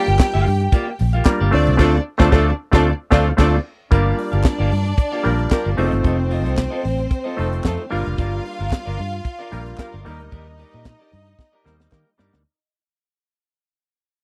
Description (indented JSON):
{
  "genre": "disco",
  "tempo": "113 BPM",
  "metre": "4/4",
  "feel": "straight",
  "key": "G minor",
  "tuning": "A4 = 440 Hz",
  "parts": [
    { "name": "clear studio string section", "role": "second line", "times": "0.0-12.4 s", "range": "C4 to G5", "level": "-28 LUFS", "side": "equal", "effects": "none" },
    { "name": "clean electric guitar", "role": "accompaniment", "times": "0.0-12.4 s", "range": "Bb3 to F5", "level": "-30 LUFS", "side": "equal", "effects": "none" },
    { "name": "mellow clav", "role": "accompaniment", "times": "0.0-12.4 s", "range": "G3 to C5", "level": "-25 LUFS", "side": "equal", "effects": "none" },
    { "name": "vintage muted fingered electric bass", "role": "bass", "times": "0.1-12.4 s", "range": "F1 to Eb3", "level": "-22 LUFS", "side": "equal", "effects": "none" },
    { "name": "tight funk drum kit", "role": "drums", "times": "0.1-12.4 s", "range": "crash cymbal, handclaps, hi-hat, kick drum, snare drum", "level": "-18 LUFS", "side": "equal", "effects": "none" },
    { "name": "group handclap", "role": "percussion", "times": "0.2-12.1 s", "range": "none", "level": "-38 LUFS", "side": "equal", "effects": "none" },
    { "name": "warm horn section", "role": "stabs", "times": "1.8-12.1 s", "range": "A3 to Bb4", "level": "-27 LUFS", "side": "equal", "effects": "none" }
  ],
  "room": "little or no reverb",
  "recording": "dry, close 1970s-style studio recording",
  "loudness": "-19 LUFS",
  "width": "mono",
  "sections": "0.0-3.9 A section; 3.9-12.5 B section",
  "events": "band accent 1.8-3.9; fade-out 3.9-12.5; drum fill 11.4-12.5",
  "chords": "0.0 Gm7; 1.5 Dm7; 3.9 Gm7; 5.8 F7; 7.9 Gm7; 10.0 Ebmaj7"
}